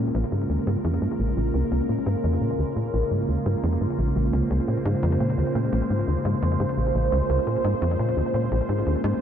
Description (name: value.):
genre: ambient, sequencer-driven space music.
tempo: 86 BPM.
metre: 4/4.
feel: straight.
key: Bb minor.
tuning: A4 = 437 Hz.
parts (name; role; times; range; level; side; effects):
phased analog pad; sustained chords; 0.0-9.2 s; Db3 to C5; -25 LUFS; right 1 dB; phaser, chorus.
tight sequencer bass; riff; 0.0-9.1 s; Bb1 to Bb2; -24 LUFS; equal; lush chorus, ping-pong delay.
room: moderate huge ambient reverb, RT60 7.9 s.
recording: dark, warm production.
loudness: -22 LUFS.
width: side -9 dB against mid.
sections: 0.0-9.2 A section.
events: none.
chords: 0.0 Bbm7.